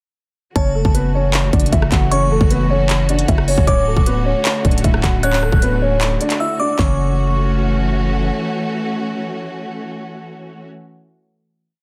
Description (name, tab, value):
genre	hip hop, trap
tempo	154 BPM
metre	4/4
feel	half-time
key	F# minor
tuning	A4 = 440 Hz
part	dark concert grand piano	melody	0.6-7.9 s	A3 to F#5	-23 LUFS	equal	low-pass filter, tape echo
part	glassy synth bell	second line	0.6-7.9 s	A5 to F#6	-28 LUFS	equal	chorus, tape echo
part	warm symphonic string section	sustained chords	0.6-10.7 s	D3 to F#4	-26 LUFS	equal	none
part	growling 808-style bass	bass	0.6-8.3 s	D1 to F#1	-20 LUFS	equal	none
part	trap drum kit	drums	0.6-6.9 s	handclaps, hi-hat, kick drum, rim click	-19 LUFS	equal	none
room	light reverb, digital ambience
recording	dense, heavily limited modern master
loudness	-17 LUFS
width	mono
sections	0.6-6.8 hook; 6.8-9.9 final chord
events	drums muted 6.4-6.8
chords	0.6 F#m7; 3.7 Dmaj7; 6.8 F#m7